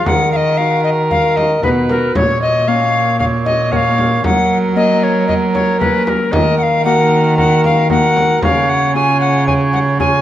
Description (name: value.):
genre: classical, renaissance-style consort dance.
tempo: 115 BPM.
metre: 4/4.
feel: straight.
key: unclear.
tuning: A4 = 441 Hz.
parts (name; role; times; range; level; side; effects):
bright alto recorder; melody; 0.0-10.2 s; A#4 to G#5; -16 LUFS; left 3 dB; none.
warm cor anglais; second line; 0.0-10.2 s; A#4 to C#5; -17 LUFS; right 2 dB; none.
Celtic harp; accompaniment; 0.0-10.2 s; A#2 to A#4; -21 LUFS; left 4 dB; none.
rich cello; bass; 0.0-10.2 s; A#2 to F#3; -17 LUFS; right 2 dB; none.
frame drum; percussion; 0.1-10.2 s; none; -22 LUFS; equal; none.
room: wet recital hall reverb, RT60 1.4 s.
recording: worn, warbling old tape, cassette tape, warbly pitch drift.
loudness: -11 LUFS.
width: side -12 dB against mid.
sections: 0.0-10.2 A section.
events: none.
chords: 0.1 D#m; 2.2 A#m; 4.2 F#; 6.3 D#m; 8.4 C#.